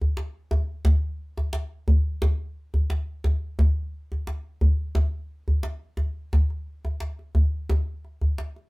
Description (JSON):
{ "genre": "west african traditional", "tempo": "88 BPM", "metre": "4/4", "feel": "straight", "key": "none", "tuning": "none", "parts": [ { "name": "djembe", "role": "percussion", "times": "0.0-8.6 s", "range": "none", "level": "-22 LUFS", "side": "equal", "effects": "none" } ], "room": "light reverb", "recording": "band playing live in one room", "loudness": "-24 LUFS", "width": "side -24 dB against mid", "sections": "0.0-8.7 A section", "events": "none", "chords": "none", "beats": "0.17 | 0.85 1.53 2.22 2.90 | 3.58 4.27 4.95 5.64 | 6.32 7.00 7.69 8.37" }